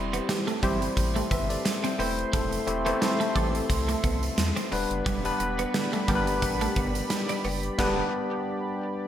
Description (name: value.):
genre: 1980s-style pop.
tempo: 88 BPM.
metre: 4/4.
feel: swing 55% on 16ths.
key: unclear.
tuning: A4 = 440 Hz.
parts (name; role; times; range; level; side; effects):
bell-like tine electric piano; accompaniment; 0.0-9.1 s; G3 to E5; -29 LUFS; left 2 dB; tube saturation, wide subtle chorus.
warm analog pad; sustained chords; 0.0-9.1 s; G4 to C6; -35 LUFS; right 1 dB; chorus.
round analog bass; bass; 0.0-8.0 s; E1 to E2; -32 LUFS; equal; none.
twelve-string electric guitar; riff; 0.1-7.6 s; G3 to D4; -34 LUFS; right 3 dB; analog chorus, digital delay.
gated 80s drum kit; drums; 0.1-8.0 s; crash cymbal, hi-hat, kick drum, snare drum; -29 LUFS; equal; gated reverb.
funky polysynth comp; stabs; 0.3-8.0 s; D3 to A4; -36 LUFS; right 3 dB; chorus, digital delay.
room: wet plate reverb, RT60 2.5 s.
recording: bright 1980s-style digital production.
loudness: -24 LUFS.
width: side -10 dB against mid.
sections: 0.0-9.1 A section.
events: band accent 7.8-9.1.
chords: 0.0 C/E; 4.7 G/E.